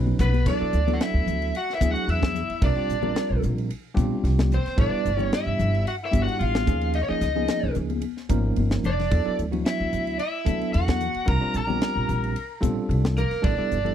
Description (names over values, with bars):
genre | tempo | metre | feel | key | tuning
electric jazz fusion | 111 BPM | 4/4 | swing 53% on 16ths | unclear | A4 = 440 Hz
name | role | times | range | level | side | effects
bell-like tine electric piano | accompaniment | 0.0-13.9 s | E#3 to B4 | -29 LUFS | right 2 dB | medium stereo tremolo
upright bass | bass | 0.0-13.9 s | E#1 to E2 | -25 LUFS | equal | none
congas | percussion | 0.1-13.9 s | none | -32 LUFS | left 14 dB | none
lead guitar through a small cranked amp | melody | 0.2-13.9 s | Bb4 to Bb5 | -28 LUFS | right 2 dB | overdrive, slapback echo
bright tenor saxophone | second line | 0.2-13.9 s | Bb3 to Bb4 | -34 LUFS | left 10 dB | none
crisp fusion drum kit | drums | 0.2-13.9 s | crash cymbal, hi-hat, kick drum, ride cymbal, snare drum | -25 LUFS | equal | none
room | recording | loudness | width
little or no reverb | dry, close 1970s-style studio recording | -22 LUFS | side -10 dB against mid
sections
0.5-13.9 A section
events
drum fill 8.4-9.1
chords
0.5 E9sus4; 2.6 C9sus4; 4.8 A9sus4; 6.7 D#9sus4; 9.1 E9sus4; 11.3 C9sus4; 13.4 A9sus4